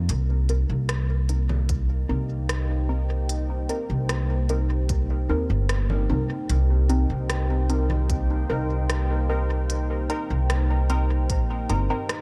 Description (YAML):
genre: ambient dub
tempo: 75 BPM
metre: 4/4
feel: straight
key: C minor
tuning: A4 = 436 Hz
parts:
  - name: deep dark ambient pad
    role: sustained chords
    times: 0.0-12.2 s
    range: Bb3 to G5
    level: -35 LUFS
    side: equal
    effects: chorus, built-in reverb
  - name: upright bass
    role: bass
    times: 0.0-11.9 s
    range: G1 to Eb2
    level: -25 LUFS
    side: equal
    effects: none
  - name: organic electronic drum kit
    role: drums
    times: 0.1-12.2 s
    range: congas, hi-hat, rim click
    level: -35 LUFS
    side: equal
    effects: dub echo
  - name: filtered dub chord stab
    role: stabs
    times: 0.5-12.2 s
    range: C4 to Bb4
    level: -34 LUFS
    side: equal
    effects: phaser, dub echo
  - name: electronic kick drum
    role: drums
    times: 1.7-11.5 s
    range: none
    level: -29 LUFS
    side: equal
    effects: none
room: little or no reverb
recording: none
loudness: -24 LUFS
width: mono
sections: 0.1-12.2 A section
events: none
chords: 0.1 Cm7